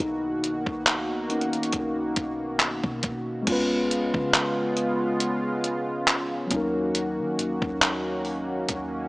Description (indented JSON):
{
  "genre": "contemporary R&B",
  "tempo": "69 BPM",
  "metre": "4/4",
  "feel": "swing 54% on 16ths",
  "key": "unclear",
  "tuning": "A4 = 440 Hz",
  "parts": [
    { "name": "mellow tine electric piano", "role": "accompaniment", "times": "0.0-9.1 s", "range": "Gb3 to Cb5", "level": "-27 LUFS", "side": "left 1 dB", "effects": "medium stereo tremolo" },
    { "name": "chorused pulse-width pad", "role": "sustained chords", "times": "0.0-9.1 s", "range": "B2 to F#4", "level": "-30 LUFS", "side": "right 1 dB", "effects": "none" },
    { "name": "clean 808-style bass", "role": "bass", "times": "0.0-9.1 s", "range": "B1 to Eb3", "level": "-40 LUFS", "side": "equal", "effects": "none" },
    { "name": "detuned 8-bit digital drum machine", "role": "drums", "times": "0.0-8.9 s", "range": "crash cymbal, handclaps, hi-hat, kick drum", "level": "-25 LUFS", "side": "equal", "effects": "none" }
  ],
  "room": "light reverb",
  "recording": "small speaker sound",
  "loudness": "-23 LUFS",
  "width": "side -21 dB against mid",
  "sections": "0.0-3.5 A section; 3.5-9.1 B section",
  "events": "tine electric piano solo 0.0-3.5",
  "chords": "0.0 Bmaj7; 3.5 Db7; 6.5 Ebm7"
}